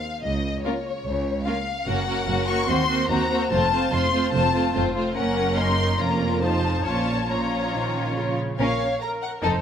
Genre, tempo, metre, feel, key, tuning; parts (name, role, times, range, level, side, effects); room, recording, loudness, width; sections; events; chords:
quick classical-period movement for string orchestra; 145 BPM; 4/4; rubato; Bb minor; A4 = 440 Hz
warm symphonic violin section; melody; 0.0-9.5 s; Db5 to Db6; -27 LUFS; left 5 dB
clear symphonic cello section; bass; 0.2-9.6 s; Db2 to Eb3; -29 LUFS; right 2 dB
warm symphonic double bass section; bass; 0.2-9.6 s; F1 to Eb2; -29 LUFS; right 2 dB
warm symphonic violin section; second line; 0.7-9.6 s; Db4 to Db5; -26 LUFS; left 2 dB
warm symphonic viola section; accompaniment; 0.7-9.6 s; F3 to Db5; -28 LUFS; right 3 dB
moderate recital hall reverb, RT60 1.4 s; -21 LUFS; side -8 dB against mid
0.0-8.6 A section; 8.6-9.6 A section
0.2 Bbm/Db (rootless); 1.9 Gb; 2.7 Cm7b5/Eb; 3.5 F; 5.2 Gb; 6.0 Bbm/F; 6.4 F7; 6.9 Bbm